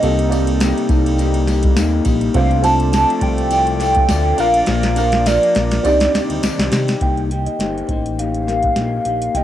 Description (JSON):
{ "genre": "indie pop, bedroom pop", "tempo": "103 BPM", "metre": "4/4", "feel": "swing 55% on 16ths", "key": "C dorian", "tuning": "A4 = 440 Hz", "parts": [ { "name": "hollow clarinet-like synth lead", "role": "melody", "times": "0.0-9.4 s", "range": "D5 to A5", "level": "-17 LUFS", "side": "right 1 dB", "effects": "analog chorus, plate reverb" }, { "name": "dark upright piano", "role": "accompaniment", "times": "0.0-7.0 s", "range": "A3 to D5", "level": "-23 LUFS", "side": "right 7 dB", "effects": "cassette tape" }, { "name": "electric guitar through a small old amp", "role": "accompaniment", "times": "0.0-9.4 s", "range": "C3 to D5", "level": "-23 LUFS", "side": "left 9 dB", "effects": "wide subtle chorus, warbly pitch drift, cassette tape" }, { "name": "warbly tape-like pad", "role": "sustained chords", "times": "0.0-7.0 s", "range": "C3 to D5", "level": "-26 LUFS", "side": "right 1 dB", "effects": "chorus, built-in reverb, cassette tape" }, { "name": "chorused synth bass", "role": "bass", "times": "0.0-9.4 s", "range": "G1 to C3", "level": "-20 LUFS", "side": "equal", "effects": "tube saturation" }, { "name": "soft vintage rhythm box", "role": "drums", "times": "0.0-9.4 s", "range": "hi-hat, kick drum, ride cymbal, snare drum", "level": "-21 LUFS", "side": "equal", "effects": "overdrive, cassette tape" }, { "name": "tambourine", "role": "percussion", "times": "0.0-6.9 s", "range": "none", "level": "-36 LUFS", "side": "left 11 dB", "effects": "none" }, { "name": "kalimba", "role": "second line", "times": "7.0-9.4 s", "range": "Bb4 to G5", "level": "-27 LUFS", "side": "right 5 dB", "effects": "lush chorus, cassette tape, analog delay" } ], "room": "light reverb", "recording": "home recording on cassette", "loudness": "-14 LUFS", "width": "side -12 dB against mid", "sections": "0.0-7.0 A section; 7.0-9.4 B section", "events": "drum fill 4.7-7.0", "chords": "0.0 Cm7; 2.3 F6/C; 4.4 Bb; 5.8 Cmadd9; 7.0 Cm7" }